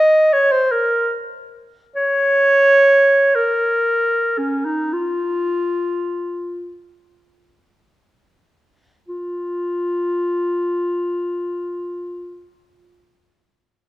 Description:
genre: classical, free, expressive piece for unaccompanied clarinet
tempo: 20-51 BPM (dotted quarters)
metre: 6/8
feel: rubato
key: unclear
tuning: A4 = 440 Hz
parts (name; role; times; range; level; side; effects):
- mellow clarinet; solo; 0.0-12.5 s; Db4 to Eb5; -16 LUFS; equal; none
room: wet recital hall reverb, RT60 1.6 s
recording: none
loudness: -16 LUFS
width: side -16 dB against mid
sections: 0.0-9.1 A section; 9.1-12.7 B section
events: slowing down 0.7-9.1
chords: none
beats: 0.71 | 1.95 3.35 | 4.93 6.75 | 9.09 10.85

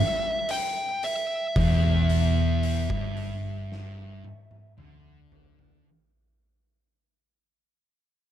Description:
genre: stoner and doom metal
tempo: 56 BPM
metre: 4/4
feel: straight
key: E minor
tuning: A4 = 440 Hz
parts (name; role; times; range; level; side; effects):
- fuzz lead guitar; melody; 0.0-4.8 s; E5 to G5; -29 LUFS; right 1 dB; distortion, tape echo
- oversized low-tuned drum kit; drums; 0.5-5.8 s; hi-hat, kick drum, snare drum, toms; -33 LUFS; equal; none
- thick fuzz guitar; riff; 1.6-5.8 s; E2 to D3; -29 LUFS; left 6 dB; distortion
- thick fuzz guitar; riff; 1.6-5.8 s; E2 to D3; -29 LUFS; right 5 dB; distortion
- hollow-body short-scale picked electric bass; bass; 1.6-5.8 s; E1 to D2; -26 LUFS; equal; overdrive
room: small room ambience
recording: dark, warm production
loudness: -23 LUFS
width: side -11 dB against mid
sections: 0.0-5.9 A section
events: fade-out 0.0-5.9; drum fill 3.7-5.9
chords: 0.0 Em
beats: 0.48 | 1.56 2.63 3.71 4.78

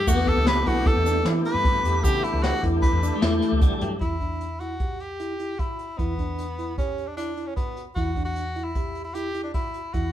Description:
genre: progressive instrumental, band music in an uneven meter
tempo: 152 BPM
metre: 5/4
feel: straight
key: E dorian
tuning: A4 = 442 Hz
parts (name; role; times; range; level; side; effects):
- bright tenor saxophone; melody; 0.0-10.1 s; B3 to B4; -28 LUFS; equal; none
- clean electric guitar; second line; 0.0-4.0 s; F#3 to B3; -28 LUFS; left 4 dB; tremolo
- overdriven tonewheel organ; accompaniment; 0.0-4.0 s; E3 to G4; -31 LUFS; equal; chorus vibrato, slow rotary speaker
- woody fretless electric bass; bass; 0.0-10.1 s; B1 to E3; -28 LUFS; equal; none
- tine electric piano; arpeggios; 0.1-10.1 s; D4 to G4; -32 LUFS; right 2 dB; fast stereo tremolo
- vintage brush drum kit; drums; 0.1-10.0 s; hi-hat, kick drum, snare drum; -25 LUFS; equal; none
- egg shaker; percussion; 0.1-3.7 s; none; -39 LUFS; right 4 dB; none
room: moderate stone room reverb, RT60 1.1 s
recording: band playing live in one room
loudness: -22 LUFS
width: side -11 dB against mid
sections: 0.0-4.0 A section; 4.0-10.1 B section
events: tenor saxophone solo 0.0-4.0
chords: 0.0 Emadd9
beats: | 0.08 0.47 0.86 1.26 1.65 | 2.04 2.44 2.83 3.22 3.62 | 4.01 4.41 4.80 5.20 5.59 | 5.99 6.38 6.78 7.18 7.57 | 7.97 8.36 8.76 9.15 9.55 | 9.94

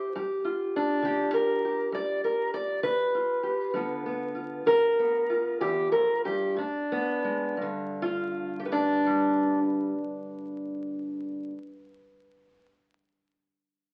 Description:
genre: acoustic country blues, solo or duo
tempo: 59-67 BPM (dotted quarters)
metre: 12/8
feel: straight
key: G mixolydian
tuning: A4 = 439 Hz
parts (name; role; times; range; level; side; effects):
- fingerpicked steel-string acoustic guitar; solo; 0.0-12.6 s; E2 to D5; -28 LUFS; equal; none
room: moderate large studio reverb, RT60 1.0 s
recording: very old 78 rpm record, vinyl crackle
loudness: -28 LUFS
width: mono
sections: 0.0-7.6 A section; 7.6-11.7 B section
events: slowing down 2.5-7.6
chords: 0.1 G7; 6.6 N.C.; 7.6 G7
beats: | 0.13 1.03 1.93 2.83 | 3.74 4.66 5.60 6.57 | 7.57 8.59 9.61 10.63

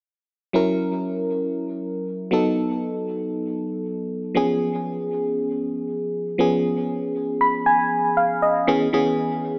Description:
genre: pop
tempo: 118 BPM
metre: 4/4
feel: swing 55% on 16ths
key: unclear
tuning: A4 = 438 Hz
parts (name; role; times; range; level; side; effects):
- FM electric piano; solo; 0.5-9.6 s; E3 to B5; -23 LUFS; equal; chorus, tape echo
room: moderate plate reverb, RT60 3.6 s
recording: AM radio sound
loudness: -23 LUFS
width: mono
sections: 0.5-8.7 A section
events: FM electric piano fill 7.2-8.7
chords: 0.5 F#7; 2.3 B7; 4.4 C#7; 8.7 C#m7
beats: | 0.55 1.05 1.56 2.07 | 2.58 3.09 3.60 4.10 | 4.61 5.12 5.63 6.14 | 6.65 7.16 7.66 8.17 | 8.68 9.19

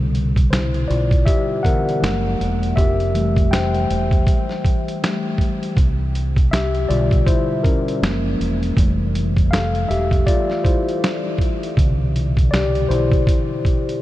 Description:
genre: lo-fi hip hop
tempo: 80 BPM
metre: 4/4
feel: swing 58% on 16ths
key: C major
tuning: A4 = 437 Hz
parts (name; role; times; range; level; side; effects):
- mellow tine electric piano; accompaniment; 0.0-14.0 s; B2 to G5; -21 LUFS; left 2 dB; cassette tape, low-pass filter
- deep dub fingered electric bass; bass; 0.0-13.2 s; E1 to C2; -21 LUFS; right 1 dB; none
- dusty soul sampler-style drum kit; drums; 0.1-14.0 s; finger snaps, hi-hat, kick drum, snare drum; -19 LUFS; right 1 dB; none
room: moderate huge ambient reverb, RT60 7.1 s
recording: dreamy mix soaked in reverb, cassette tape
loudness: -16 LUFS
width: side -15 dB against mid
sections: 0.0-14.0 A section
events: tine electric piano solo 0.0-14.0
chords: 0.0 Cmaj7; 2.0 F#maj9; 2.8 Fmaj9; 5.8 Cmaj7; 8.0 F#maj9; 8.8 Fmaj9; 11.8 Cmaj7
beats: 0.52 1.27 2.02 | 2.77 3.52 4.27 5.02 | 5.77 6.52 7.27 8.02 | 8.77 9.52 10.27 11.02 | 11.77 12.52 13.27 14.02

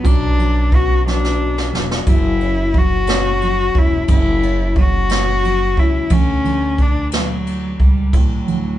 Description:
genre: six-eight pop ballad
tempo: 59 BPM (dotted quarters)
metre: 6/8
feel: straight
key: unclear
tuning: A4 = 441 Hz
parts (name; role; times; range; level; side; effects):
- warm cello; melody; 0.0-8.8 s; F#3 to F#4; -19 LUFS; left 2 dB; none
- warm baby grand piano; accompaniment; 0.0-8.8 s; F#2 to D4; -24 LUFS; equal; none
- upright bass; bass; 0.0-8.8 s; E1 to D2; -19 LUFS; equal; none
- jazz brush drum kit; drums; 0.0-8.6 s; kick drum, ride cymbal, snare drum; -17 LUFS; equal; none
room: moderate studio ambience, RT60 0.5 s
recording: band playing live in one room, nothing above 10.3 kHz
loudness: -14 LUFS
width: side -13 dB against mid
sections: 0.0-8.8 A section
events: drum fill 1.1-2.1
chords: 0.0 Bm; 2.1 F#5; 6.1 Dmaj7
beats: | 0.05 1.06 | 2.07 3.08 | 4.09 5.10 | 6.11 7.12 | 8.13

